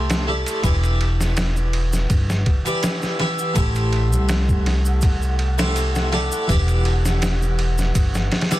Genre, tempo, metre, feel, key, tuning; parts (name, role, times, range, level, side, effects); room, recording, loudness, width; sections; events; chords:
trip hop; 82 BPM; 4/4; straight; E minor; A4 = 440 Hz
harpsichord; accompaniment; 0.0-8.6 s; E3 to E5; -24 LUFS; equal; tremolo, vintage 12-bit sampler grit, low-pass filter, tape echo
upright bass; bass; 0.0-8.3 s; E1 to C2; -20 LUFS; equal; tube saturation
trip hop sampler-style drum kit; drums; 0.1-8.6 s; kick drum, ride cymbal, snare drum; -23 LUFS; equal; overdrive
tube shaker; percussion; 0.1-8.6 s; -33 LUFS; right 2 dB
flickering grainy texture; texture; 1.3-8.6 s; F#5; -36 LUFS; left 1 dB; built-in reverb
small room ambience; dense, heavily limited modern master; -17 LUFS; side -15 dB against mid
0.0-8.6 A section
0.0 Am7; 0.6 Em7; 3.6 Am7; 6.5 Em7